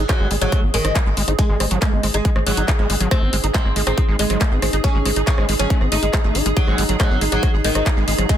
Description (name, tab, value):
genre	psychedelic trance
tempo	139 BPM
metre	4/4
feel	straight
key	G# major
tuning	A4 = 440 Hz
part	pulsing gated texture	sustained chords	0.0-8.4 s	G#4	-27 LUFS	right 6 dB	chorus, built-in reverb, sidechain pumping
part	overdriven acid bass	riff	0.0-8.4 s	F#3 to D#4	-27 LUFS	equal	distortion, auto-pan, sidechain pumping, ping-pong delay
part	tight sequencer bass	bass	0.0-8.3 s	G#1	-22 LUFS	equal	none
part	warbly tape-like pad	texture	0.1-8.4 s	D#4 to D#5	-29 LUFS	equal	chorus, built-in reverb, sidechain pumping
part	oud	melody	0.1-8.4 s	D#3 to D#4	-24 LUFS	equal	phaser, sidechain pumping, digital delay
part	drum and bass drum kit	drums	0.1-8.4 s	handclaps, hi-hat, rim click	-24 LUFS	left 2 dB	soft clipping on snare
part	electronic kick drum	drums	0.1-8.4 s	none	-18 LUFS	equal	none
room	light reverb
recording	dense, heavily limited modern master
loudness	-16 LUFS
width	side -10 dB against mid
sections	0.0-8.4 A section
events	none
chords	0.0 G#5